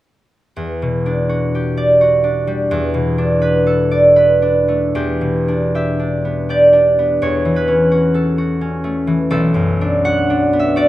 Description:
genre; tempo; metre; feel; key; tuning
classical, solo harp piece; 74-87 BPM; 3/4; rubato; E dorian; A4 = 440 Hz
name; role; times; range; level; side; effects
concert harp; solo; 0.6-10.9 s; B1 to F#5; -13 LUFS; equal; none
room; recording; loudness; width
moderate recital hall reverb, RT60 1.5 s; close, detailed microphones; -13 LUFS; side -15 dB against mid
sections
0.6-5.0 A section; 5.0-10.9 B section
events
none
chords
0.6 Em9; 2.7 Bm7/E; 5.0 Em7; 7.2 A69/E; 9.3 Bm7

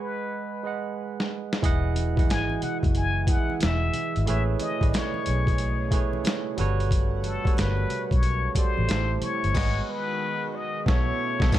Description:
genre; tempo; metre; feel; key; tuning
R&B, neo-soul; 91 BPM; 4/4; swing 63% on 16ths; E major; A4 = 437 Hz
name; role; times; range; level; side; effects
trumpet with plunger mute; melody; 0.0-11.6 s; A4 to G#5; -31 LUFS; left 5 dB; plate reverb
barky tine electric piano; accompaniment; 0.0-11.6 s; B2 to G#5; -30 LUFS; right 8 dB; overdrive, plate reverb
boom bap sampler-style drum kit; drums; 1.2-11.6 s; crash cymbal, hi-hat, kick drum, snare drum; -25 LUFS; left 1 dB; none
warm analog pad; sustained chords; 1.6-11.6 s; B2 to F#5; -39 LUFS; left 4 dB; chorus
vintage muted fingered electric bass; bass; 1.6-11.6 s; E1 to B1; -26 LUFS; left 1 dB; none
congas; percussion; 1.6-9.4 s; none; -40 LUFS; left 7 dB; none
room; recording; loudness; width
light reverb; none; -23 LUFS; side -13 dB against mid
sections
0.0-11.6 A section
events
drum fill 1.0-1.6; band accent 9.5-11.6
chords
0.0 G#m7; 1.6 Emaj9; 4.3 Amaj9; 6.6 Gmaj9#11; 8.9 Am7; 9.5 G#m7; 10.9 B9sus4

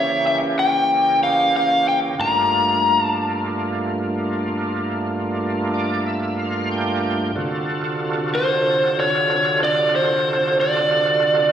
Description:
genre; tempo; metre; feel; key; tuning
blues; 93 BPM; 4/4; straight; G dorian; A4 = 445 Hz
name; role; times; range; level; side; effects
lead guitar through a small cranked amp; melody; 0.0-3.5, 8.3-11.5 s; C5 to Bb5; -17 LUFS; left 1 dB; overdrive, slapback echo
overdriven tonewheel organ; accompaniment; 0.0-11.5 s; G2 to G5; -22 LUFS; right 2 dB; slow rotary speaker, chorus vibrato, slapback echo
room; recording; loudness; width
moderate plate reverb, RT60 2.5 s; live gig heard through the venue's PA, recital hall reverb; -17 LUFS; side -9 dB against mid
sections
0.0-11.5 A section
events
tonewheel organ fill 5.4-7.4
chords
0.0 C#dim7; 2.2 Gm7; 7.4 D7#9

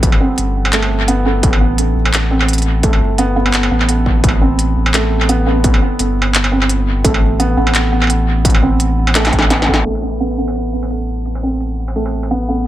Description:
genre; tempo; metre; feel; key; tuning
half-time drum and bass; 171 BPM; 4/4; swing 55% on 16ths, half-time; A minor; A4 = 439 Hz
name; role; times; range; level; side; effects
felt-muted upright piano; arpeggios; 0.0-12.7 s; G3 to C4; -17 LUFS; right 2 dB; low-pass filter, tape echo
saturated sub bass; bass; 0.0-12.7 s; G1 to A1; -16 LUFS; equal; none
electronic kick drum; drums; 0.0-9.8 s; none; -15 LUFS; equal; distortion
industrial drum kit; drums; 0.0-12.4 s; handclaps, hi-hat, snare drum, struck metal; -18 LUFS; equal; dub echo
room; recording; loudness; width
light reverb, digital ambience; echo-heavy mix, low-pass filter; -12 LUFS; side -13 dB against mid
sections
0.0-9.9 A section; 9.9-12.7 B section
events
drop 0.0-9.9; drum fill 9.2-9.9; filter sweep 9.9-12.7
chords
0.0 Am

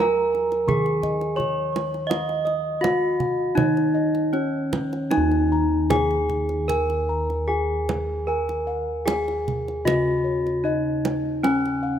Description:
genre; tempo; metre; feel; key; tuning
Javanese gamelan; 77 BPM; 4/4; uneven beats; Eb slendro; A4 = 440 Hz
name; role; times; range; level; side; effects
gamelan-type bronze metallophone; melody; 0.0-12.0 s; Db4-25c to Eb5; -23 LUFS; right 1 dB; none
gamelan-type bossed gongs; arpeggios; 0.0-12.0 s; Db5-25c to Db6-25c; -30 LUFS; left 5 dB; none
gamelan-type bronze metallophone; arpeggios; 0.0-5.1 s; Db5-25c to Eb6; -35 LUFS; right 7 dB; none
gamelan-type bossed gongs; bass; 0.0-12.0 s; Eb2 to Eb5; -28 LUFS; equal; none
kendang; percussion; 0.3-11.7 s; none; -28 LUFS; right 4 dB; none
room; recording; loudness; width
moderate plate reverb, RT60 2.9 s; rough home demo mix; -20 LUFS; side -9 dB against mid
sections
0.0-5.1 A section; 5.1-12.0 B section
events
none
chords
none

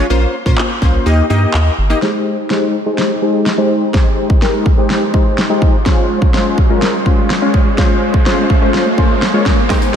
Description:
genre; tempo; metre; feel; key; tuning
dance-pop; 125 BPM; 4/4; straight; Ab major; A4 = 445 Hz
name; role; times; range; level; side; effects
funky polysynth comp; accompaniment; 0.0-10.0 s; Ab3 to Eb5; -15 LUFS; left 2 dB; chorus, sidechain pumping, low-pass filter, slapback echo
round analog bass; bass; 0.1-1.9 s; G1 to Bb2; -13 LUFS; equal; sidechain pumping
pop drum kit; drums; 0.5-9.9 s; handclaps, hi-hat, kick drum, snare drum; -14 LUFS; equal; none
filtered supersaw swell; sustained chords; 2.0-10.0 s; Ab3 to C5; -22 LUFS; right 1 dB; sidechain pumping, low-pass filter
riser; sound effects; 3.4-10.0 s; none; -23 LUFS; right 1 dB; slapback echo
direct-recorded clean electric guitar; riff; 9.7-10.0 s; Ab3 to C5; -19 LUFS; right 7 dB; wide subtle chorus, low-pass filter, slapback echo
tambourine; percussion; 9.7-9.9 s; none; -34 LUFS; left 9 dB; none
room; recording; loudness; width
moderate concert hall reverb, RT60 2.3 s; big arena sound; -11 LUFS; side -8 dB against mid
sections
0.0-2.0 A section; 2.0-10.0 B section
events
kick muted 1.1-2.0; build-up 2.0-10.0; drum fill 2.0-10.0; filter sweep 2.0-10.0; riser 3.4-10.0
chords
0.1 Bbmadd9; 1.1 Eb; 2.0 Abmaj7; 5.9 Dbmaj7

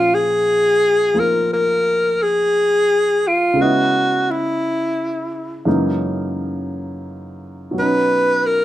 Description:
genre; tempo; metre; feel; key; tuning
jazz ballad; 58 BPM; 4/4; swing 68% on 8ths; Bb minor; A4 = 439 Hz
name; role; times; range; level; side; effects
breathy alto saxophone; melody; 0.0-8.6 s; Fb4 to B4; -15 LUFS; equal; none
warm grand piano; accompaniment; 0.0-8.6 s; Gb2 to Eb5; -22 LUFS; equal; none
room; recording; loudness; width
moderate studio reverb, RT60 0.6 s; minimal, uncompressed stereo recording; -15 LUFS; side -13 dB against mid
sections
0.0-8.6 A section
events
none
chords
0.0 Bbm9; 3.6 Dbm9; 5.7 Gb13; 7.7 Bmaj9

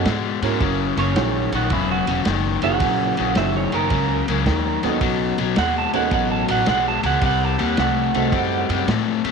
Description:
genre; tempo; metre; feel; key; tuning
electric blues shuffle; 109 BPM; 4/4; swing 67% on 8ths; unclear; A4 = 440 Hz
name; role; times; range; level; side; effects
warm upright piano; accompaniment; 0.0-8.8 s; A3 to A#4; -26 LUFS; right 15 dB; none
overdriven electric guitar; riff; 0.0-9.3 s; F#2 to A3; -22 LUFS; left 14 dB; spring reverb
upright bass; bass; 0.0-9.3 s; E1 to A2; -25 LUFS; right 1 dB; none
vintage drum kit; drums; 0.1-9.3 s; kick drum, ride cymbal, snare drum; -26 LUFS; right 2 dB; none
electric guitar through a small old amp; second line; 1.0-8.9 s; E4 to A5; -23 LUFS; right 11 dB; none
room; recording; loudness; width
light reverb, small room ambience; 1960s-style stereo with parts hard left and right; -18 LUFS; side -5 dB against mid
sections
0.0-9.3 A section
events
clean electric guitar solo 0.0-9.3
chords
0.0 Bsus2; 0.6 F#9; 5.0 B9; 7.2 Cdim7

